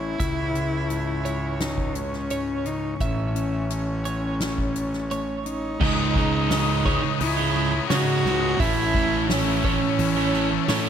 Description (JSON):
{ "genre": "post-rock", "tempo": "86 BPM", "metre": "4/4", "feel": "straight", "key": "C# minor", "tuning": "A4 = 441 Hz", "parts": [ { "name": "warm cello", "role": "melody", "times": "0.0-10.9 s", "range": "C#4 to F#4", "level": "-27 LUFS", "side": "left 1 dB", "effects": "tape echo" }, { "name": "mellow woodwind section", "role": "sustained chords", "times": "0.0-10.9 s", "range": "E3 to E6", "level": "-37 LUFS", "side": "left 1 dB", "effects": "none" }, { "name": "mellow electric guitar", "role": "arpeggios", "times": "0.0-5.8 s", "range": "C#2 to E4", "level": "-34 LUFS", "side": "left 4 dB", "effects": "tape echo" }, { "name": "twelve-string electric guitar", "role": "arpeggios", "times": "0.0-10.9 s", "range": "C#5 to E5", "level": "-34 LUFS", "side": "right 5 dB", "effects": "tape echo" }, { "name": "fuzz fingered electric bass", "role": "bass", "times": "0.0-10.9 s", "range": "A1 to C#3", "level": "-28 LUFS", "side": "equal", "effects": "overdrive" }, { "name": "soft-mallet drum kit", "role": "drums", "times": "0.2-10.8 s", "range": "crash cymbal, hi-hat, kick drum, snare drum", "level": "-28 LUFS", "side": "equal", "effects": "none" }, { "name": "crunchy overdriven guitar", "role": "riff", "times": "5.8-10.9 s", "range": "C#2 to A4", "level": "-26 LUFS", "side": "right 13 dB", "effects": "none" }, { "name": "distorted electric guitar", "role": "riff", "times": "5.8-10.9 s", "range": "C#2 to A4", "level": "-28 LUFS", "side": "left 15 dB", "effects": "overdrive" } ], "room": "light reverb, small room ambience", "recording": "none", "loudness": "-21 LUFS", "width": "side -8 dB against mid", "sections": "0.0-5.8 A section; 5.8-10.9 B section", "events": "none", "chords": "0.2 C#m; 3.0 A; 5.8 C#madd9; 8.6 A", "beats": "| 0.20 0.90 1.60 2.31 | 3.01 3.71 4.41 5.11 | 5.81 6.51 7.21 7.90 | 8.60 9.29 9.99 10.69" }